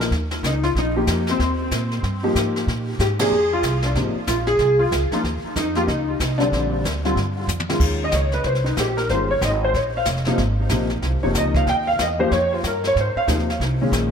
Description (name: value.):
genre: jazz piano trio.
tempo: 187 BPM.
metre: 4/4.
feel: swing 62% on 8ths.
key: Eb mixolydian.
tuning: A4 = 437 Hz.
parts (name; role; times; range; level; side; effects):
warm concert grand piano; melody; 0.0-14.1 s; Bb2 to G5; -20 LUFS; left 1 dB; ensemble chorus, diffuse ambient delay.
upright bass; bass; 0.0-14.1 s; F1 to Bb2; -24 LUFS; right 1 dB; none.
jazz brush drum kit; drums; 0.0-14.1 s; brushed snare drum, crash cymbal, hi-hat, kick drum, ride cymbal, snare drum, toms; -27 LUFS; equal; none.
room: moderate plate reverb, RT60 1.4 s.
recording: dreamy mix soaked in reverb.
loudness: -18 LUFS.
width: side -7 dB against mid.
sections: 0.0-7.8 A section; 7.8-14.1 B section.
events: band accent 3.2; drum fill 7.5-7.8; grand piano solo 7.8-14.1.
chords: 0.1 Eb13; 2.7 Bb7sus2; 4.0 Ab69; 5.2 Eb7sus2; 6.5 Bb69; 7.8 Eb13; 10.4 Ab69; 11.7 Ebadd9; 13.0 Ab69.